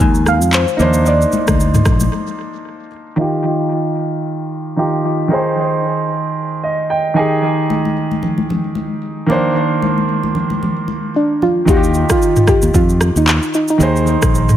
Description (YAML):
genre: afrobeats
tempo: 113 BPM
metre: 4/4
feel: swing 58% on 16ths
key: Eb major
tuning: A4 = 442 Hz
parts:
  - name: soft round pluck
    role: melody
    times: 0.0-2.1, 11.2-14.6 s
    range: D4 to Ab5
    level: -17 LUFS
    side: equal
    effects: chorus, tape echo
  - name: warm grand piano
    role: accompaniment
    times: 0.0-14.6 s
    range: Eb3 to Ab5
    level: -17 LUFS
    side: right 2 dB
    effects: low-pass filter, tape echo
  - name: fingered electric bass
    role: bass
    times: 0.0-2.1, 11.7-14.6 s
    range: Bb1 to F2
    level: -15 LUFS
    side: equal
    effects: none
  - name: afro-pop drum kit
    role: drums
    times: 0.0-2.1, 11.7-14.6 s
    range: handclaps, kick drum, rim click, shaker, toms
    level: -16 LUFS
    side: equal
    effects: overdrive
  - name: congas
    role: percussion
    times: 0.0-2.1, 7.7-11.6 s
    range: none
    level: -21 LUFS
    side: left 3 dB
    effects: tape echo
room: light reverb, digital ambience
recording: echo-heavy mix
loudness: -13 LUFS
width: side -11 dB against mid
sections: 0.0-3.2 A section; 3.2-11.7 B section; 11.7-14.6 A section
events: break 2.1-3.2; filter sweep on grand piano 3.2-11.7; grand piano fill 6.4-7.4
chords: 0.0 Fm7/Eb; 0.8 Bbadd9; 3.2 Ebadd9; 5.3 Ab/Eb; 7.2 Ebadd11; 9.3 Bbadd9/Eb; 11.7 Ebadd9; 13.8 Ab